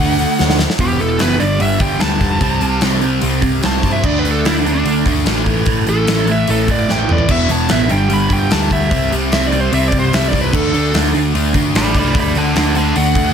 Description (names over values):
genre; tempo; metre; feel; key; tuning
hard rock; 148 BPM; 4/4; straight; unclear; A4 = 442 Hz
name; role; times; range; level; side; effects
bluesy overdriven lead guitar; melody; 0.0-13.3 s; D4 to B5; -20 LUFS; right 1 dB; distortion, plate reverb, analog delay
crunchy overdriven guitar; riff; 0.0-13.3 s; E2 to D4; -20 LUFS; left 11 dB; none
overdriven semi-hollow guitar; riff; 0.0-13.3 s; E2 to D4; -19 LUFS; right 12 dB; phaser
picked electric bass; bass; 0.0-13.3 s; E1 to G2; -19 LUFS; equal; none
gated 80s drum kit; drums; 0.2-13.2 s; crash cymbal, hi-hat, kick drum, snare drum, toms; -19 LUFS; left 1 dB; none
room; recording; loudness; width
light reverb, small room ambience; none; -12 LUFS; side -7 dB against mid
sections
0.8-13.3 A section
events
drum fill 0.4-0.8, 6.9-7.3; lead electric guitar solo 0.8-13.3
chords
0.0 D; 0.8 E5; 1.4 Gsus2; 2.4 C5; 4.0 D5; 5.5 A5; 7.3 E5; 7.9 G5; 8.9 C5; 10.5 D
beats
0.39 | 0.79 1.20 1.60 2.01 | 2.42 2.82 3.23 3.63 | 4.04 4.45 4.85 5.26 | 5.67 6.07 6.48 6.88 | 7.29 7.69 8.10 8.50 | 8.91 9.31 9.72 10.12 | 10.53 10.93 11.34 11.74 | 12.15 12.55 12.96